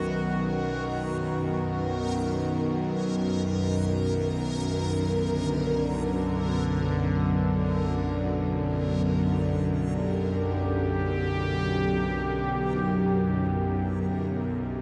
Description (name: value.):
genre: dark ambient drone.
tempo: free time.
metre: none.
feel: none.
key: unclear.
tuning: A4 = 440 Hz.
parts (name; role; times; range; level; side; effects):
sweeping resonant pad; sustained chords; 0.0-14.8 s; D3 to G4; -32 LUFS; equal; chorus.
bowed-like drone; drone; 0.0-14.8 s; B1 to F#2; -30 LUFS; equal; built-in reverb.
backwards swelling texture; texture; 0.0-14.8 s; A#4; -38 LUFS; equal; built-in reverb.
room: wet huge ambient reverb, RT60 8.3 s.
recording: dark, warm production, nothing above 10.9 kHz.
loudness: -27 LUFS.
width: mono.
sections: 0.0-14.8 A section.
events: none.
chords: 0.0 B; 5.2 G.